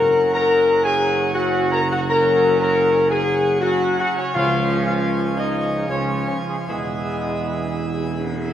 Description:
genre	classical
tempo	74-81 BPM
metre	3/4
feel	straight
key	unclear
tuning	A4 = 435 Hz
part	warm trumpet section	melody	0.0-8.5 s	Ab4 to Bb5	-25 LUFS	right 1 dB	none
part	bright trombone section	sustained chords	0.0-8.5 s	E3 to Db4	-28 LUFS	right 3 dB	none
part	pipe organ, plenum	sustained chords	0.0-8.5 s	B2 to Ab4	-28 LUFS	right 1 dB	none
part	warm French horn section	sustained chords	0.0-8.5 s	G#3 to Bb4	-20 LUFS	left 3 dB	none
part	mellow tuba	bass	0.0-8.5 s	Gb1 to E2	-26 LUFS	right 4 dB	none
part	timpani	percussion	4.4-5.5 s	Db3	-31 LUFS	left 2 dB	none
room	wet concert hall reverb, RT60 1.8 s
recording	none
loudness	-17 LUFS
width	side -10 dB against mid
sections	0.0-8.5 A section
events	none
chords	0.0 Gb5; 4.4 Db; 6.7 E

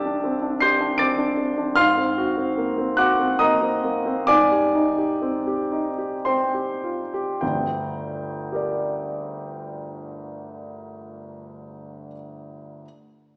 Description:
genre	classical, impressionist solo piano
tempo	49-80 BPM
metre	3/4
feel	rubato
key	G minor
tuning	A4 = 441 Hz
part	clear concert grand piano	solo	0.0-12.9 s	G1 to D7	-24 LUFS	equal	none
room	wet recital hall reverb, RT60 1.5 s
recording	heard from further back in the room, small speaker sound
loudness	-22 LUFS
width	mono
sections	0.0-7.4 A section; 7.4-10.7 B section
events	slowing down 0.6-7.4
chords	0.0 C69; 1.8 Ab9; 4.3 Abmaj7; 7.4 Gm

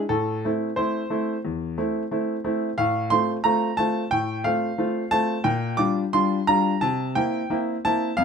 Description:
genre	classical-period piano sonatina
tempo	90 BPM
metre	4/4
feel	straight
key	F major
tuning	A4 = 439 Hz
part	clear baby grand piano	solo	0.0-8.2 s	E2 to D6	-21 LUFS	equal	none
room	light reverb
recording	none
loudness	-21 LUFS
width	side -6 dB against mid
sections	0.0-8.2 A section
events	none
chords	0.1 Am; 2.8 F/A; 5.5 Gm7/Bb; 6.8 C7

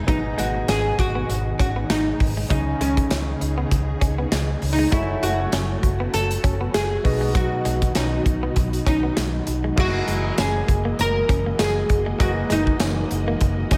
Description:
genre	1980s-style pop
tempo	99 BPM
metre	4/4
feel	swing 55% on 16ths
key	unclear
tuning	A4 = 440 Hz
part	clear concert grand piano	accompaniment	0.0-13.8 s	G#2 to G#5	-32 LUFS	equal	slapback echo
part	soft string machine	sustained chords	0.0-13.8 s	B2 to D#5	-33 LUFS	equal	ensemble chorus
part	oud	melody	0.1-13.8 s	C#4 to A#4	-27 LUFS	equal	slapback echo
part	direct-recorded clean electric guitar	riff	0.1-13.8 s	F#3 to C#4	-34 LUFS	equal	lush chorus, slapback echo
part	vintage muted fingered electric bass	bass	0.1-13.8 s	F#1 to C#2	-28 LUFS	equal	none
part	modern studio drum kit	drums	0.1-13.8 s	crash cymbal, hi-hat, kick drum, snare drum, tambourine	-26 LUFS	equal	none
room	moderate lush hall reverb, RT60 2.0 s, studio ambience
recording	big arena sound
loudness	-22 LUFS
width	mono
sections	0.0-9.8 A section; 9.8-13.8 B section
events	none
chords	0.1 G#m; 2.5 C#sus2; 4.9 F#madd9; 7.0 B; 9.8 F#13

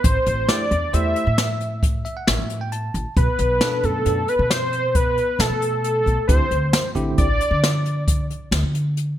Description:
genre	progressive instrumental, band music in an uneven meter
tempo	134 BPM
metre	7/4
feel	straight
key	unclear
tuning	A4 = 439 Hz
part	wide unison lead	melody	0.0-8.0 s	A4 to E5	-22 LUFS	equal	digital delay
part	upright bass	bass	0.0-9.1 s	A1 to D3	-23 LUFS	equal	none
part	jazz brush drum kit	drums	0.0-9.1 s	hi-hat, kick drum, snare drum	-22 LUFS	equal	none
part	bell-like tine electric piano	accompaniment	0.5-7.3 s	B2 to A5	-27 LUFS	right 1 dB	medium stereo tremolo
room	light reverb, small room ambience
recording	bright 1980s-style digital production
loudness	-18 LUFS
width	side -12 dB against mid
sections	0.0-9.2 A section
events	tine electric piano fill 1.8-3.2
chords	0.0 Am7; 3.2 Bm7; 6.3 D9sus4

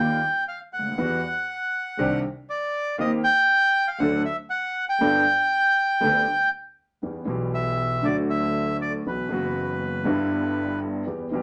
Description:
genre	tango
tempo	119 BPM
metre	4/4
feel	rubato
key	G major, E minor from 7.0 s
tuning	A4 = 441 Hz
part	bandoneon	melody	0.0-10.8 s	B4 to G5	-25 LUFS	equal	none
part	warm concert grand piano	accompaniment	0.0-11.4 s	F#1 to A4	-27 LUFS	equal	none
part	rich double bass	bass	0.0-11.4 s	F#1 to E2	-37 LUFS	equal	none
room	moderate small room reverb, RT60 0.5 s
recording	nothing above 10.4 kHz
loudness	-24 LUFS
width	mono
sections	0.0-7.0 A section; 7.0-11.4 B section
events	none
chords	0.0 Ebadd9; 1.0 Emadd9; 2.0 Cmadd9; 3.0 Eb6; 4.0 D; 5.0 Gadd9; 7.0 Em; 8.0 D; 9.1 Bsus4; 10.1 G6

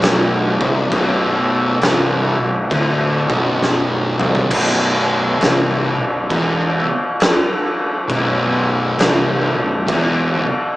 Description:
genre	stoner and doom metal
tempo	67 BPM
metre	4/4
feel	swing 65% on 8ths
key	unclear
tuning	A4 = 440 Hz
part	thick fuzz guitar	riff	0.0-10.4 s	B1 to E2	-22 LUFS	left 2 dB	distortion
part	thick fuzz guitar	riff	0.0-10.4 s	B1 to E2	-23 LUFS	right 2 dB	distortion
part	fuzz fingered electric bass	bass	0.0-10.4 s	B0 to E1	-22 LUFS	equal	overdrive
part	oversized low-tuned drum kit	drums	0.0-10.2 s	crash cymbal, kick drum, snare drum, toms	-17 LUFS	equal	none
room	light reverb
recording	band playing live in one room, small speaker sound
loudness	-14 LUFS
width	side -17 dB against mid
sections	0.0-4.5 A section; 4.5-10.8 A section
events	drum fill 3.6-4.5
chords	0.0 Bm; 4.5 N.C.

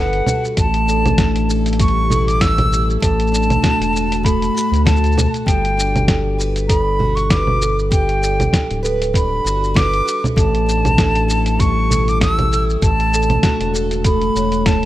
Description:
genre	folktronica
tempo	98 BPM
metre	4/4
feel	swing 56% on 16ths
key	unclear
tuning	A4 = 440 Hz
part	silver concert flute	melody	0.0-14.9 s	F#5 to E6	-21 LUFS	equal	digital delay
part	large celesta	second line	0.0-14.9 s	A4 to A5	-24 LUFS	right 2 dB	vintage 12-bit sampler grit, digital delay
part	picked plugged-in twelve-string acoustic guitar	arpeggios	0.0-14.9 s	A2 to B4	-23 LUFS	left 2 dB	digital delay
part	round analog bass	bass	0.0-14.9 s	D1 to D2	-19 LUFS	equal	none
part	lo-fi sampler-style drum kit	drums	0.1-14.9 s	congas, hi-hat, shaker, snare drum	-20 LUFS	right 1 dB	none
part	electronic kick drum	drums	0.6-14.8 s	none	-17 LUFS	equal	none
room	light reverb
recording	none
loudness	-14 LUFS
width	side -14 dB against mid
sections	0.0-14.9 A section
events	none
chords	0.0 Gmaj7; 0.6 A7sus4; 3.0 D; 5.5 Gmaj7; 10.4 A7sus4; 12.8 D

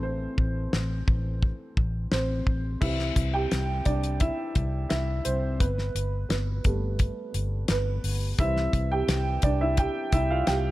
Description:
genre	piano-driven pop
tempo	86 BPM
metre	4/4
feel	straight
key	unclear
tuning	A4 = 440 Hz
part	dark upright piano	accompaniment	0.0-10.7 s	E3 to G5	-29 LUFS	right 1 dB	none
part	vintage muted fingered electric bass	bass	0.0-10.7 s	G1 to C2	-28 LUFS	equal	none
part	damped 70s drum kit	drums	0.4-10.6 s	crash cymbal, hi-hat, kick drum, snare drum	-26 LUFS	left 1 dB	none
room	little or no reverb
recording	none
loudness	-24 LUFS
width	side -17 dB against mid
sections	0.0-2.8 A section; 2.8-10.7 B section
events	upright piano solo 0.0-2.8, 2.8-10.7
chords	0.0 Am; 2.8 C; 5.6 Gadd9; 8.4 C

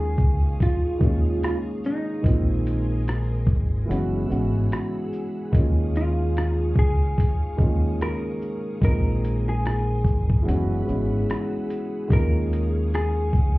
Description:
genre	lo-fi hip hop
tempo	73 BPM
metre	4/4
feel	swing 56% on 16ths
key	Eb minor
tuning	A4 = 440 Hz
part	hollow-body jazz guitar	melody	0.0-13.6 s	Eb4 to Bb4	-30 LUFS	equal	low-pass filter, analog delay, plate reverb
part	felt-muted upright piano	accompaniment	0.0-13.6 s	Eb3 to Gb4	-27 LUFS	right 1 dB	cassette tape, low-pass filter
part	string machine, full ensemble	sustained chords	0.0-13.6 s	Ab4 to Fb6	-40 LUFS	left 3 dB	ensemble chorus, low-pass filter, plate reverb
part	deep dub fingered electric bass	bass	0.0-13.6 s	Gb1 to Eb2	-23 LUFS	equal	none
part	dusty soul sampler-style drum kit	drums	0.2-13.6 s	hi-hat, kick drum, rim click, shaker	-22 LUFS	equal	none
room	little or no reverb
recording	heard muffled through a wall, club reverb, vinyl crackle, EQ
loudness	-21 LUFS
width	side -19 dB against mid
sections	0.0-13.6 A section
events	none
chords	0.0 Eb9sus4; 2.2 Bb9sus4; 3.9 Gb9sus4; 5.5 Eb9sus4; 8.8 Bb9sus4; 10.5 Gb9sus4; 12.1 Eb9sus4

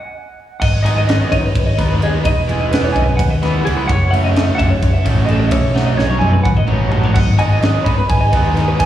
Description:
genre	math rock and midwest emo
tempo	257 BPM (eighths)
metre	7/8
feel	straight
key	unclear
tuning	A4 = 440 Hz
part	mellow electric guitar	melody	0.0-8.9 s	B4 to B5	-22 LUFS	right 4 dB	slapback echo, digital delay
part	twelve-string electric guitar	arpeggios	0.6-8.9 s	G#4 to G#5	-23 LUFS	left 4 dB	tremolo, slapback echo
part	picked electric bass	bass	0.6-8.9 s	E1 to F#2	-16 LUFS	equal	none
part	crisp fusion drum kit	drums	0.6-8.9 s	crash cymbal, kick drum, ride cymbal, snare drum, toms	-18 LUFS	equal	none
part	cranked stack guitar	riff	0.8-8.8 s	B2 to E4	-21 LUFS	right 2 dB	overdrive, slapback echo
room	studio ambience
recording	live gig heard through the venue's PA, recital hall reverb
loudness	-12 LUFS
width	side -12 dB against mid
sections	0.6-8.9 A section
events	stop 0.0-0.6; drum fill 5.8-7.2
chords	0.0 N.C.; 0.6 G#m; 2.3 Emaj7; 3.9 F#m7; 5.5 B9sus4; 7.2 G#m

